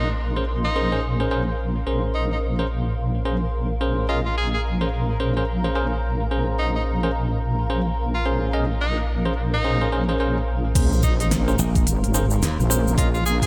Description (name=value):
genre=glitch hop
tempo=108 BPM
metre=4/4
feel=swing 60% on 16ths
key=Bb minor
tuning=A4 = 440 Hz
part: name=edgy tenor saxophone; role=melody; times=0.0-13.5 s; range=Eb4 to Ab4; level=-32 LUFS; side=equal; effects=tape echo
part: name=wobble bass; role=bass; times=0.0-13.5 s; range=Ab1 to Bb1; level=-25 LUFS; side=equal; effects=chorus, tube saturation
part: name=granular cloud pad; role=texture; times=0.0-13.5 s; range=Bb4 to C6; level=-35 LUFS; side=equal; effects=built-in reverb, sidechain pumping
part: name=bell-like tine electric piano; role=stabs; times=0.4-13.1 s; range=Db4 to Eb5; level=-30 LUFS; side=equal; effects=sidechain pumping, tape echo
part: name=electronic kick drum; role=drums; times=10.8-13.5 s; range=none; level=-23 LUFS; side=equal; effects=none
part: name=pop drum kit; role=drums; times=10.8-13.5 s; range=crash cymbal, hi-hat, rim click, snare drum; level=-31 LUFS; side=equal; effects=none
part: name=egg shaker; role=percussion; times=10.8-13.5 s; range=none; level=-32 LUFS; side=equal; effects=none
part: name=sub drop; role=sound effects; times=10.8-13.0 s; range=none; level=-30 LUFS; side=equal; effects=none
part: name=slap bass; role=bass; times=11.6-12.6 s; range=Bb1 to Eb2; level=-24 LUFS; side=equal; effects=none
room=moderate lush hall reverb, RT60 2.3 s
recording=dreamy mix soaked in reverb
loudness=-22 LUFS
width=mono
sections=0.0-10.8 A section; 10.8-13.5 B section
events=drop 10.8-13.5; impact 10.8-13.0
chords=0.0 Bbm9